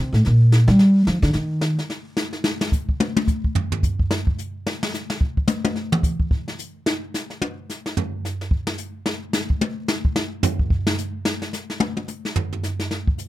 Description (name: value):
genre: jazz, small-group swing and bop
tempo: 218 BPM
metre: 4/4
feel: swing 60% on 8ths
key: Bb major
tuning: A4 = 440 Hz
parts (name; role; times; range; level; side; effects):
- upright bass; bass; 0.0-1.8 s; A2 to G3; -14 LUFS; equal; none
- jazz brush drum kit; drums; 0.1-13.3 s; brushed snare drum, hi-hat, kick drum, snare drum, toms; -22 LUFS; equal; none
room: little or no reverb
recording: rough home demo mix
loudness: -20 LUFS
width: side -15 dB against mid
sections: 0.0-2.4 A section; 2.4-13.3 A section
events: upright bass solo 0.0-2.4; drum solo 2.4-13.3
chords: none